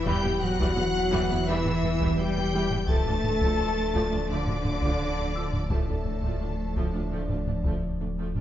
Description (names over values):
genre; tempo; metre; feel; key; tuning
cinematic, hybrid orchestral and electronic film score; 85 BPM; 4/4; straight; unclear; A4 = 439 Hz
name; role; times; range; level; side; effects
warm symphonic violin section; melody; 0.0-7.8 s; A5 to A6; -37 LUFS; left 3 dB; none
rich symphonic violin section; second line; 0.0-7.8 s; A4 to A5; -36 LUFS; left 2 dB; none
deep rumbling drone; sustained chords; 0.5-8.4 s; E3 to D5; -37 LUFS; left 1 dB; none
mellow French horn section; sustained chords; 0.0-7.8 s; A3 to A4; -32 LUFS; left 4 dB; none
rich studio cello section; bass; 0.0-7.8 s; A2 to A3; -33 LUFS; right 1 dB; none
sub bass with octave; bass; 0.0-8.4 s; D1 to E1; -33 LUFS; equal; none
warm symphonic viola section; accompaniment; 0.1-8.4 s; E3 to F4; -36 LUFS; right 1 dB; none
mellow trombone section; sustained chords; 0.1-8.2 s; E3 to E4; -36 LUFS; right 3 dB; none
rich symphonic double bass section; bass; 0.1-8.4 s; D2 to E2; -35 LUFS; right 3 dB; none
taiko ensemble; drums; 0.1-8.4 s; none; -30 LUFS; equal; none
felt-muted upright piano; texture; 0.1-8.4 s; B4 to E6; -40 LUFS; right 2 dB; digital delay
room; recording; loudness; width
moderate scoring stage reverb, RT60 1.6 s; nothing above 7.6 kHz; -24 LUFS; side -12 dB against mid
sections
0.0-8.4 A section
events
none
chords
0.0 Em; 2.9 Dm